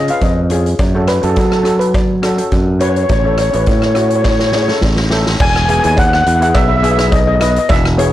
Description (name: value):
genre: calypso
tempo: 104 BPM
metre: 4/4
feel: swing 53% on 16ths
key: E major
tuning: A4 = 440 Hz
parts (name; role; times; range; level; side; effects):
- steel pan; melody; 0.0-8.1 s; A4 to G#5; -16 LUFS; left 1 dB; none
- steel pan; accompaniment; 0.0-8.1 s; B3 to B4; -20 LUFS; left 1 dB; none
- modern bright fingered electric bass; bass; 0.0-8.1 s; E1 to F#3; -15 LUFS; equal; none
- street-band drum kit; drums; 0.1-8.1 s; crash cymbal, hi-hat, kick drum, rim click, snare drum; -17 LUFS; equal; none
- cowbell; percussion; 0.2-7.8 s; none; -25 LUFS; right 1 dB; none
room: light reverb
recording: blown-out, overdriven recording, overdrive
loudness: -11 LUFS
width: side -13 dB against mid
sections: 0.0-5.4 A section; 5.4-8.1 B section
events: drum fill 4.3-5.4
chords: 0.0 C#; 0.8 F#m; 3.1 A; 5.4 Emaj7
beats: 0.22 | 0.80 1.37 1.95 2.52 | 3.10 3.68 4.25 4.83 | 5.40 5.98 6.55 7.12 | 7.70